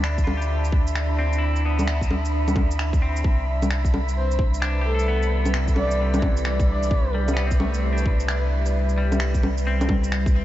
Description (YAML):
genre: future garage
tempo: 131 BPM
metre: 4/4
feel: swing 64% on 16ths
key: unclear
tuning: A4 = 441 Hz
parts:
  - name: clean electric guitar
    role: accompaniment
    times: 0.0-10.2 s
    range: C3 to A4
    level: -32 LUFS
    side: left 2 dB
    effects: analog chorus, sidechain pumping, low-pass filter, tape echo
  - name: deep dark ambient pad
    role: sustained chords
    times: 0.0-10.4 s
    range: G3 to A5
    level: -29 LUFS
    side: right 1 dB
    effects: chorus, built-in reverb, sidechain pumping
  - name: warm sub bass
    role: bass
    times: 0.0-10.4 s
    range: C2 to D2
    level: -23 LUFS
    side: equal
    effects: sidechain pumping
  - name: electronic finger snaps, shaker and bongos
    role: drums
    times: 0.0-10.3 s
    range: none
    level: -29 LUFS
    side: equal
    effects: none
  - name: wind-like tuned noise texture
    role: texture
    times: 0.0-10.4 s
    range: B5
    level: -37 LUFS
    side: right 3 dB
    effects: built-in reverb, wide subtle chorus
  - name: electronic kick drum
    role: drums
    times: 0.2-10.3 s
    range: none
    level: -22 LUFS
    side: equal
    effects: none
  - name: breathy flute-like synth lead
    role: melody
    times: 4.2-7.1 s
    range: A4 to D5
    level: -31 LUFS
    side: left 1 dB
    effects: wide subtle chorus, cassette tape, tape echo
room: moderate huge ambient reverb, RT60 7.8 s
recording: dreamy mix soaked in reverb, vinyl crackle, nothing above 7.8 kHz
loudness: -20 LUFS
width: side -14 dB against mid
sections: 0.0-10.4 A section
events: none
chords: 0.0 Dm9; 3.2 Cmaj9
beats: 0.04 0.50 0.96 | 1.42 1.88 2.33 2.79 | 3.25 3.71 4.17 4.62 | 5.08 5.54 6.00 6.46 | 6.91 7.37 7.83 8.29 | 8.74 9.20 9.66 10.12